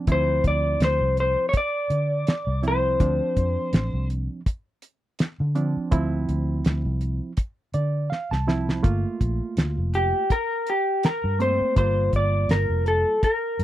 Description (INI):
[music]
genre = straight-eighth soul blues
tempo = 82 BPM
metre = 4/4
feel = swing 56% on 16ths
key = D minor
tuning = A4 = 437 Hz
[part]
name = reed electric piano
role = accompaniment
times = 0.0-13.2 s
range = F3 to A5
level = -29 LUFS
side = right 4 dB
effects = none
[part]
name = electric slide guitar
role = melody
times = 0.1-4.1, 10.0-13.6 s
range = G4 to D5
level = -23 LUFS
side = left 1 dB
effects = none
[part]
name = vintage muted fingered electric bass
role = bass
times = 0.1-13.6 s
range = F1 to D3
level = -24 LUFS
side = equal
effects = none
[part]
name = damped 70s drum kit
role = drums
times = 0.1-13.6 s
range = hi-hat, kick drum, snare drum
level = -22 LUFS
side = equal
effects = none
[sound]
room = light reverb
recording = dry, close 1970s-style studio recording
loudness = -21 LUFS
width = side -13 dB against mid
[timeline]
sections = 0.0-13.6 A section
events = reed electric piano fill 7.4-8.8; drum fill 8.1-8.8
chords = 0.0 Dm7; 8.8 Gm7